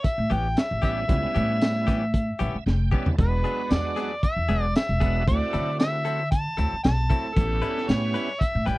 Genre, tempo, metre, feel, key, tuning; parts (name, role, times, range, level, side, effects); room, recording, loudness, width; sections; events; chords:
straight-eighth soul blues; 115 BPM; 4/4; swing 53% on 16ths; A mixolydian; A4 = 443 Hz
overdriven harmonica; melody; 0.0-8.8 s; A4 to A5; -28 LUFS; equal
crunchy breakbeat drum kit; drums; 0.0-8.8 s; hi-hat, kick drum, snare drum, tambourine, toms; -23 LUFS; equal
upright bass; bass; 0.2-8.8 s; E1 to D3; -25 LUFS; equal
direct-recorded clean electric guitar; stabs; 0.3-8.8 s; E3 to B4; -32 LUFS; left 6 dB; lush chorus
bright tonewheel organ; accompaniment; 0.8-8.3 s; G3 to A5; -32 LUFS; right 6 dB; overdrive, chorus vibrato, slow rotary speaker
little or no reverb; dry, close 1970s-style studio recording; -22 LUFS; side -19 dB against mid
0.0-8.8 A section
tonewheel organ fill 2.1-3.2; drum fill 2.7-3.2
0.0 A9; 3.2 E9; 5.3 D9; 7.4 A9